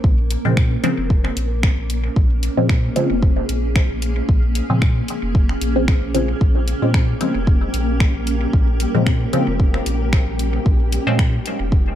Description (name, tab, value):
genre	dub techno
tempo	113 BPM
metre	4/4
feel	swing 55% on 16ths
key	Bb dorian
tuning	A4 = 440 Hz
part	granular cloud pad	sustained chords	0.0-12.0 s	Bb3 to Bb4	-25 LUFS	equal	built-in reverb, sidechain pumping
part	pure sine sub bass	bass	0.0-11.9 s	F1 to Bb2	-22 LUFS	equal	sidechain pumping
part	electronic kick drum	drums	0.0-11.8 s	none	-16 LUFS	equal	studio reverb
part	deep house drum kit	drums	0.3-11.6 s	finger snaps, hi-hat	-28 LUFS	equal	studio reverb, dub echo
part	filtered dub chord stab	stabs	0.5-11.2 s	Db3 to C4	-22 LUFS	equal	phaser, sidechain pumping, dub echo
part	flickering grainy texture	texture	6.7-12.0 s	G3 to G4	-31 LUFS	equal	built-in reverb, sidechain pumping
room	little or no reverb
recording	dark, warm production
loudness	-16 LUFS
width	side -11 dB against mid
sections	0.0-12.0 A section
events	none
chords	0.0 Bbm7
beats	| 0.04 0.57 1.10 1.63 | 2.16 2.69 3.23 3.76 | 4.29 4.82 5.35 5.88 | 6.41 6.94 7.47 8.00 | 8.54 9.07 9.60 10.13 | 10.66 11.19 11.72